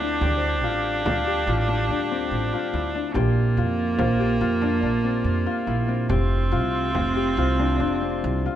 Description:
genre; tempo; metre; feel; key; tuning
contemporary instrumental, chamber music in an uneven meter; 142 BPM; 7/4; straight; unclear; A4 = 442 Hz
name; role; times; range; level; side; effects
rich viola; second line; 0.0-8.6 s; Bb3 to D4; -25 LUFS; right 4 dB; none
warm woodwind section; sustained chords; 0.0-8.6 s; C3 to G4; -33 LUFS; equal; none
Celtic harp; arpeggios; 0.0-8.6 s; C4 to G4; -27 LUFS; left 9 dB; none
upright bass; bass; 0.0-8.4 s; F1 to F2; -25 LUFS; right 2 dB; none
frame drum; percussion; 0.2-8.6 s; none; -31 LUFS; right 1 dB; none
small celesta; texture; 0.2-8.2 s; G4 to C5; -36 LUFS; left 4 dB; none
room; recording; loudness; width
light reverb; close, detailed microphones; -20 LUFS; side -11 dB against mid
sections
0.0-8.6 A section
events
none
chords
0.0 Dsus4; 3.2 Bbsus2; 6.1 F

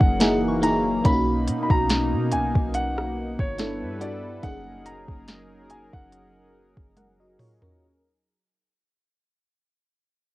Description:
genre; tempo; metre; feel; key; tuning
contemporary R&B; 71 BPM; 4/4; swing 54% on 16ths; F# major; A4 = 440 Hz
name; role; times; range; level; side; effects
warm grand piano; melody; 0.0-6.7 s; C#5 to B5; -28 LUFS; equal; cassette tape
FM electric piano with soft pad layer; accompaniment; 0.0-8.0 s; A#3 to F#5; -26 LUFS; equal; chorus, phaser, cassette tape
warm analog pad; sustained chords; 0.0-7.8 s; B2 to B4; -31 LUFS; equal; chorus, sidechain pumping, cassette tape
soft 808-style bass; bass; 0.0-7.4 s; F#1 to B2; -30 LUFS; equal; none
smooth R&B drum kit; drums; 0.0-7.8 s; hi-hat, kick drum, rim click, snare drum, toms; -22 LUFS; equal; overdrive
soft synth bell; texture; 0.2-4.8 s; F#5 to C#6; -41 LUFS; left 1 dB; chorus, cassette tape, analog delay
room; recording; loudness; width
little or no reverb; home recording on cassette; -21 LUFS; side -18 dB against mid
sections
0.0-7.8 A section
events
fade-out 0.0-7.8; drum fill 7.0-7.8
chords
0.2 F#13; 1.1 Bmaj9; 3.6 G69; 4.4 F#69

